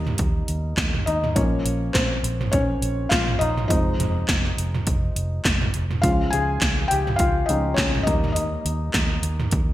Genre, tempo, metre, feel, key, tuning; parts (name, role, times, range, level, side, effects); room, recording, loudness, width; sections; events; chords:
piano-driven pop; 103 BPM; 4/4; swing 56% on 16ths; A4 = 439 Hz
felt-muted upright piano; accompaniment; 0.0-9.7 s; F3 to Ab5; -25 LUFS; left 2 dB
vintage muted fingered electric bass; bass; 0.0-9.7 s; F1 to Eb2; -26 LUFS; equal
80s electronic pad drums; drums; 0.1-9.7 s; handclaps, hi-hat, kick drum, snare drum, toms; -23 LUFS; right 1 dB; gated reverb on snare and toms, gated reverb
moderate lush hall reverb, RT60 1.7 s, digital ambience; bright 1980s-style digital production; -20 LUFS; side -14 dB against mid
0.0-9.7 A section
felt piano solo 0.0-9.7
0.0 Eb; 1.4 Bbm; 3.7 Fm; 6.0 Db; 8.1 Eb